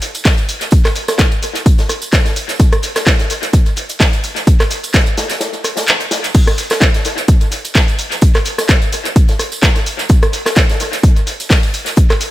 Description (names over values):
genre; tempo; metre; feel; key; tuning
house; 128 BPM; 4/4; swing 55% on 16ths; none; none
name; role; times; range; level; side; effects
punchy analog drum machine; drums; 0.0-12.3 s; crash cymbal, handclaps, hi-hat, rim click, shaker; -17 LUFS; equal; analog delay
unplugged drum kit; drums; 0.0-12.3 s; hi-hat, snare drum; -24 LUFS; left 2 dB; sidechain pumping on hats, high-pass filter on hats, high-pass filter on snare, high-pass filter on room, analog delay
tambourine; percussion; 0.1-12.2 s; none; -28 LUFS; right 5 dB; analog delay
electronic kick drum; drums; 0.3-12.1 s; none; -11 LUFS; equal; none
room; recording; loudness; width
studio ambience; echo-heavy mix; -11 LUFS; side -15 dB against mid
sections
0.0-12.3 A section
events
break 5.4-6.3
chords
none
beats
0.25 | 0.72 1.19 1.66 2.13 | 2.60 3.06 3.53 4.00 | 4.47 4.94 5.41 5.88 | 6.35 6.82 7.28 7.75 | 8.22 8.69 9.16 9.63 | 10.10 10.56 11.03 11.50 | 11.97